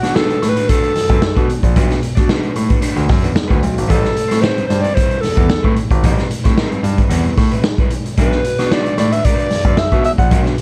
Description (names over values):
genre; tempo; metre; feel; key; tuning
funk; 112 BPM; 4/4; straight; unclear; A4 = 441 Hz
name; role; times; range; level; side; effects
breathy alto saxophone; melody; 0.0-10.4 s; F#4 to F#5; -21 LUFS; equal; none
electric guitar at the edge of break-up; accompaniment; 0.0-10.6 s; G3 to D5; -26 LUFS; equal; subtle chorus
clear concert grand piano; bass; 0.0-10.6 s; G#1 to B2; -21 LUFS; equal; none
raw garage drum kit; drums; 0.0-10.6 s; hi-hat, kick drum, snare drum; -18 LUFS; equal; none
room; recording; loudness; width
light reverb; dark, warm production; -15 LUFS; mono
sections
0.0-10.6 A section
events
none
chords
0.0 Bm7; 3.9 Am9; 8.2 Bm7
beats
0.16 0.69 1.23 | 1.76 2.29 2.83 3.36 | 3.90 4.43 4.97 5.50 | 6.04 6.57 7.11 7.64 | 8.17 8.71 9.24 9.78 | 10.32